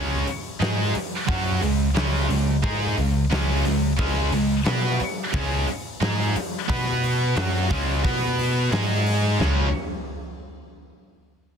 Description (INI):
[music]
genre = hard rock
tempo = 89 BPM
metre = 4/4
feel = straight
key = unclear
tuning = A4 = 441 Hz
[part]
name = distorted electric guitar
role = riff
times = 0.0-9.7 s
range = Db3 to Cb5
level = -28 LUFS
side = right 12 dB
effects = overdrive
[part]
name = heavy high-gain guitar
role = riff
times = 0.0-9.7 s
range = Db3 to Cb5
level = -30 LUFS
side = equal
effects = distortion
[part]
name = tight distorted guitar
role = riff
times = 0.0-9.7 s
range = Db3 to Cb5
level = -29 LUFS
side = left 14 dB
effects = distortion
[part]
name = overdriven picked electric bass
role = bass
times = 0.0-9.7 s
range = Db2 to Cb3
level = -24 LUFS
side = equal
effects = none
[part]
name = big rock drum kit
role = drums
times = 0.3-9.6 s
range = hi-hat, kick drum, snare drum, toms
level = -28 LUFS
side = equal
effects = none
[sound]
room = little or no reverb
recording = dense, heavily limited modern master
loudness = -20 LUFS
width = side -7 dB against mid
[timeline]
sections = 0.0-9.4 A section; 9.4-11.6 B section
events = none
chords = 0.0 Db5; 6.7 Cb5; 7.4 Db5; 8.0 Cb5; 8.7 Ab5; 9.4 Db5